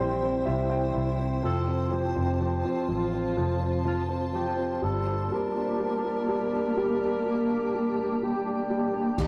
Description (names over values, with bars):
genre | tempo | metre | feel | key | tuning
pop ballad | 62 BPM | 4/4 | straight | unclear | A4 = 441 Hz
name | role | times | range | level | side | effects
warm upright piano | accompaniment | 0.0-9.3 s | C3 to G5 | -32 LUFS | equal | none
granular cloud pad | sustained chords | 0.0-9.3 s | Bb3 to D6 | -32 LUFS | equal | built-in reverb
vintage muted fingered electric bass | bass | 0.0-9.3 s | F1 to Eb2 | -32 LUFS | equal | none
warm alto saxophone | melody | 1.5-9.3 s | Eb4 to Bb4 | -36 LUFS | equal | none
picked steel-string acoustic guitar | arpeggios | 9.2-9.3 s | Eb3 to G4 | -34 LUFS | equal | none
loose indie drum kit | drums | 9.2-9.3 s | crash cymbal, kick drum | -32 LUFS | equal | none
room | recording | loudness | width
wet stone room reverb, RT60 1.2 s | rough rehearsal-room recording, tube saturation | -28 LUFS | mono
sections
0.0-9.2 A section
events
upright piano fill 0.0-1.4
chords
0.0 C; 1.4 F; 4.8 Gmadd9